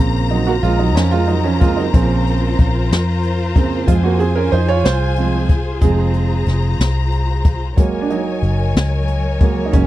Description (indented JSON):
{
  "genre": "six-eight pop ballad",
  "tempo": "61 BPM (dotted quarters)",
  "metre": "6/8",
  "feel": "straight",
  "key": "unclear",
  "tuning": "A4 = 440 Hz",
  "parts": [
    { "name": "warm upright piano", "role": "accompaniment", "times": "0.0-9.9 s", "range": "Db3 to Db5", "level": "-19 LUFS", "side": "right 5 dB", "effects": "none" },
    { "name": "warm symphonic string section", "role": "sustained chords", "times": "0.0-9.9 s", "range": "Gb3 to Bb5", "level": "-24 LUFS", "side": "left 4 dB", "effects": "none" },
    { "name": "vintage muted fingered electric bass", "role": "bass", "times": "0.0-9.9 s", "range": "F1 to F2", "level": "-17 LUFS", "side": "left 1 dB", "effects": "none" },
    { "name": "jazz brush drum kit", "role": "drums", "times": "0.3-9.9 s", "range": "hi-hat, kick drum, snare drum", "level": "-14 LUFS", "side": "left 1 dB", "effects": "none" }
  ],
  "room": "little or no reverb",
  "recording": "dry, close 1970s-style studio recording",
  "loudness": "-14 LUFS",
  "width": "side -15 dB against mid",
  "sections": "0.0-9.9 A section",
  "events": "upright piano solo 0.0-9.9",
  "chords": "0.0 Bbmadd9; 3.9 Fm; 7.8 Gbadd9",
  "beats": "0.95 | 1.93 2.91 | 3.88 4.85 | 5.82 6.80 | 7.78 8.76 | 9.73"
}